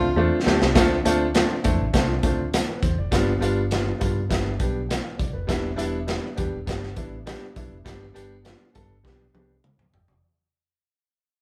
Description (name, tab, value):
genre	uptempo 1960s-style soul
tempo	101 BPM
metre	4/4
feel	straight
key	unclear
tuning	A4 = 440 Hz
part	warm upright piano	accompaniment	0.0-10.4 s	G3 to G5	-27 LUFS	equal	none
part	vintage muted fingered electric bass	bass	0.0-10.2 s	E1 to G2	-30 LUFS	equal	none
part	crunchy breakbeat drum kit	drums	0.5-10.2 s	hi-hat, kick drum, snare drum, toms	-27 LUFS	equal	none
room	moderate studio reverb, RT60 0.7 s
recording	band playing live in one room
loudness	-23 LUFS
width	mono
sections	0.8-10.2 A section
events	drum fill 0.2-0.8, 9.0-10.2; fade-out 0.8-10.2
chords	0.0 Dm7; 3.1 G7; 5.5 Em7; 7.9 G